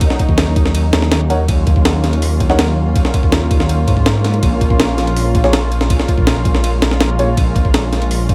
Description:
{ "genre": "drum and bass, jungle", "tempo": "163 BPM", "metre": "4/4", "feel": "straight", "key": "Bb minor", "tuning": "A4 = 440 Hz", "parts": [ { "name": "dark studio string section", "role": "sustained chords", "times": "0.0-8.3 s", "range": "Gb3 to F4", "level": "-24 LUFS", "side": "equal", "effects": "none" }, { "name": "dark detuned saw bass", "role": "bass", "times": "0.0-8.3 s", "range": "Bb1 to Ab2", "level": "-18 LUFS", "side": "equal", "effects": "tube saturation" }, { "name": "breakbeat sampler-style drum kit", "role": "drums", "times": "0.0-8.3 s", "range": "hi-hat, kick drum, ride cymbal, snare drum", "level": "-17 LUFS", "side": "equal", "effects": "none" }, { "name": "dark concert grand piano", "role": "stabs", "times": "1.3-2.6, 5.4-7.3 s", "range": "Bb3 to Gb5", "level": "-24 LUFS", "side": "equal", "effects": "dub echo" } ], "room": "light reverb", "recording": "none", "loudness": "-14 LUFS", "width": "mono", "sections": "0.0-8.3 A section", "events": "none", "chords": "0.0 Ebm7; 4.4 Bbm7" }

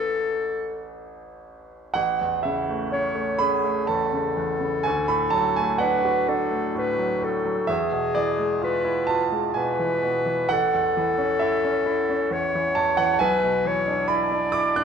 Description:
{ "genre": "classical, romantic duo for clarinet and grand piano", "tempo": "54-68 BPM", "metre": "3/4", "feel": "rubato", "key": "A major", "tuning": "A4 = 444 Hz", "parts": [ { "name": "clear clarinet", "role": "melody", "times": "0.0-14.8 s", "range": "G#4 to D5", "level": "-25 LUFS", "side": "left 3 dB", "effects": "none" }, { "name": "bright grand piano", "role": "accompaniment", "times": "0.0-14.8 s", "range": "A1 to F#6", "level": "-23 LUFS", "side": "right 3 dB", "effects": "none" } ], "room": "moderate recital hall reverb, RT60 1.5 s", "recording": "none", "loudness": "-21 LUFS", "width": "side -7 dB against mid", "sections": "0.0-2.0 A section; 2.0-14.8 B section", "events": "none", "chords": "0.0 A; 4.9 D; 7.7 E7b9; 10.5 A; 13.2 E7/B" }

